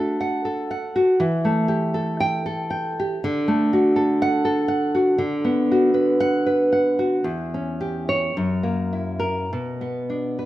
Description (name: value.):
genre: romantic piece for solo classical guitar.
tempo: 50-62 BPM.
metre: 4/4.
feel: rubato.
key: D major, B minor from 5.2 s.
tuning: A4 = 441 Hz.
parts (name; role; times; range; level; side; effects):
nylon-string guitar; solo; 0.0-10.5 s; E2 to G5; -19 LUFS; equal; none.
room: moderate recital hall reverb, RT60 1.5 s.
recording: recorded in a church or concert hall.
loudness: -19 LUFS.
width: side -15 dB against mid.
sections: 0.0-10.5 A section.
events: none.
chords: 0.0 D; 1.2 A5/E; 3.2 D; 5.2 Bm/D; 7.3 C#dim/E; 8.3 F#7; 9.5 Bm.